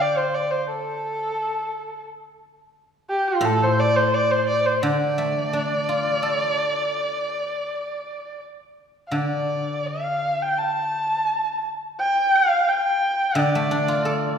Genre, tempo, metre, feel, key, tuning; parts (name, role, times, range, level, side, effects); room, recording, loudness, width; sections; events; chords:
chinese traditional, Chinese chamber ensemble; 86 BPM; 4/4; rubato; D yu mode; A4 = 441 Hz
dark erhu; melody; 0.0-14.4 s; F4 to A5; -21 LUFS; equal
guzheng; accompaniment; 0.0-14.4 s; A2 to A4; -25 LUFS; equal
wet concert hall reverb, RT60 1.7 s; recorded in a church or concert hall; -20 LUFS; side -7 dB against mid
0.0-9.1 A section; 9.1-14.4 B section